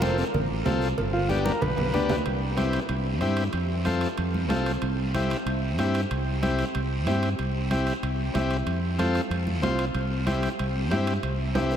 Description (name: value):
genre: latin, cumbia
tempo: 187 BPM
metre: 4/4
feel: straight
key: C major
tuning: A4 = 441 Hz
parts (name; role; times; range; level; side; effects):
- combo organ; melody; 0.0-2.2 s; C4 to B4; -32 LUFS; equal; diffuse ambient delay
- combo organ; accompaniment; 0.0-11.8 s; B3 to C5; -28 LUFS; left 2 dB; none
- fingered electric bass; bass; 0.0-11.7 s; F1 to G2; -27 LUFS; equal; none
- congas; percussion; 0.0-11.7 s; none; -33 LUFS; right 1 dB; none
- guiro; percussion; 0.0-11.8 s; none; -40 LUFS; right 2 dB; none
- cowbell and timbales; percussion; 0.3-11.8 s; none; -35 LUFS; right 5 dB; none
room: wet huge ambient reverb, RT60 7.8 s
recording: dreamy mix soaked in reverb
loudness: -24 LUFS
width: side -9 dB against mid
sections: 0.0-2.3 A section; 2.3-11.8 B section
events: transistor combo organ solo 0.0-2.3; drum fill 1.3-2.3, 11.6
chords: 0.0 F; 1.0 G; 2.3 C; 3.5 F; 4.8 C; 8.7 F; 10.0 C